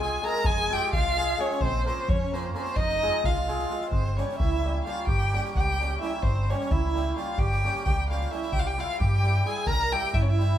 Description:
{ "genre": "balkan folk, Balkan wedding band", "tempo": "260 BPM (eighths)", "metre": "5/8", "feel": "straight", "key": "F minor", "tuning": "A4 = 442 Hz", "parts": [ { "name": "warm violin", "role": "melody", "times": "0.0-10.6 s", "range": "C5 to Bb5", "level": "-28 LUFS", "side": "left 1 dB", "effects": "none" }, { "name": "musette accordion", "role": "second line", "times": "0.0-10.6 s", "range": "C4 to Bb4", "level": "-34 LUFS", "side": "right 3 dB", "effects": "none" }, { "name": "hammered dulcimer", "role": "accompaniment", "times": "0.0-10.6 s", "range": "G3 to Bb4", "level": "-34 LUFS", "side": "right 1 dB", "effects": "none" }, { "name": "hollow-body short-scale fingered electric bass", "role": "bass", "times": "0.0-10.5 s", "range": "F1 to G2", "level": "-28 LUFS", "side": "equal", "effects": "none" }, { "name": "street-band drum kit", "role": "percussion", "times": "0.0-10.4 s", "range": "kick drum, snare drum", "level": "-30 LUFS", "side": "equal", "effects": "none" } ], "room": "moderate large studio reverb, RT60 1.1 s", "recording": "band playing live in one room", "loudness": "-23 LUFS", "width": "side -11 dB against mid", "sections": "0.0-3.9 A section; 3.9-10.6 B section", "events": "none", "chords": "0.0 Fm; 1.6 Bbm; 2.8 Fm; 3.9 Gdim; 8.5 C" }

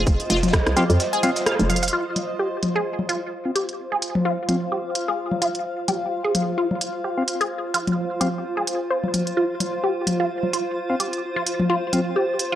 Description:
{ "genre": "minimal techno", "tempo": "129 BPM", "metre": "4/4", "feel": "swing 56% on 16ths", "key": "unclear", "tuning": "A4 = 440 Hz", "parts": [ { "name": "hollow knocking FM bass", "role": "bass", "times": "0.0-1.9 s", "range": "F1 to F2", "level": "-21 LUFS", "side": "equal", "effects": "sidechain pumping" }, { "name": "granular cloud pad", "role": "texture", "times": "0.0-12.6 s", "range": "F4 to F5", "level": "-27 LUFS", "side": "equal", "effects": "built-in reverb, sidechain pumping" }, { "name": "dusty soul sampler-style drum kit", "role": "drums", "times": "0.1-1.9 s", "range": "hi-hat, shaker, snare drum", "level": "-35 LUFS", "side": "equal", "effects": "overdrive, sidechain pumping on perc, high-pass filter on perc, sidechain pumping on hats, high-pass filter on hats, high-pass filter on snare" }, { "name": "electronic kick drum", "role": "drums", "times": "0.1-0.6 s", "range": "none", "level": "-22 LUFS", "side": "equal", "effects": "none" }, { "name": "garage drum kit", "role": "drums", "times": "0.1-12.5 s", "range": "hi-hat, rim click", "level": "-26 LUFS", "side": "right 1 dB", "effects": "low-pass filter on hats, low-pass filter on snare, low-pass filter on room" }, { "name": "resonant blip pluck", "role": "riff", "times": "0.3-12.6 s", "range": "F4 to F5", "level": "-25 LUFS", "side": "equal", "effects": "phaser, sidechain pumping, tape echo" }, { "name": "electronic toms and congas", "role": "percussion", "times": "0.4-12.0 s", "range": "none", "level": "-26 LUFS", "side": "left 1 dB", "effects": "none" }, { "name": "percussive organ stab", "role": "stabs", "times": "0.8-12.0 s", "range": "C4 to F5", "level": "-26 LUFS", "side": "left 1 dB", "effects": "chorus, cassette tape, tape echo" } ], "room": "moderate plate reverb, RT60 1.2 s, digital ambience", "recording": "dry, gritty hardware recording, cassette tape", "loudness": "-20 LUFS", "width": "side -11 dB against mid", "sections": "0.0-1.9 A section; 1.9-12.6 B section", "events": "drop 0.0-1.9; kick drops out 1.0-1.9; band accent 1.5; drum fill 1.7; filter sweep on synth stab 1.9-12.6", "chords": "0.0 F5" }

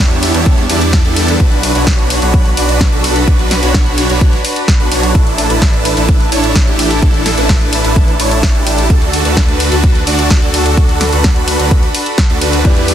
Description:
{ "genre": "EDM, festival progressive house", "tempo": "128 BPM", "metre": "4/4", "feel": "straight", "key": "D major", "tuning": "A4 = 440 Hz", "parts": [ { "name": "supersaw pad", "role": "sustained chords", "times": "0.0-12.9 s", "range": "D4 to B5", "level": "-19 LUFS", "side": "equal", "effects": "sidechain pumping" }, { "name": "supersaw chords", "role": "riff", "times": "0.0-12.9 s", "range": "G3 to D5", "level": "-16 LUFS", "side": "right 1 dB", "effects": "phaser, sidechain pumping, dub echo" }, { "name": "wide detuned saw bass", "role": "bass", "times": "0.0-12.9 s", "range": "A1 to E2", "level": "-16 LUFS", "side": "equal", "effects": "chorus, sidechain pumping" }, { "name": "house drum kit", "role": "drums", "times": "0.1-12.9 s", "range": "hi-hat, ride cymbal, snare drum", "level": "-18 LUFS", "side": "equal", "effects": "studio reverb" }, { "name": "electronic kick drum", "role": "drums", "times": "0.5-12.7 s", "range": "none", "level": "-11 LUFS", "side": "equal", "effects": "studio reverb" }, { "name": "bright baby grand piano", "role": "accompaniment", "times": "12.6-12.9 s", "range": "E3 to D4", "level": "-18 LUFS", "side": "left 2 dB", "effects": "sidechain pumping" } ], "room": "little or no reverb", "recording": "dense, heavily limited modern master", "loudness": "-9 LUFS", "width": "side -10 dB against mid", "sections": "0.0-12.9 A section", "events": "none", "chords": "0.0 Em7; 1.4 Bm; 5.2 Asus4; 8.9 D" }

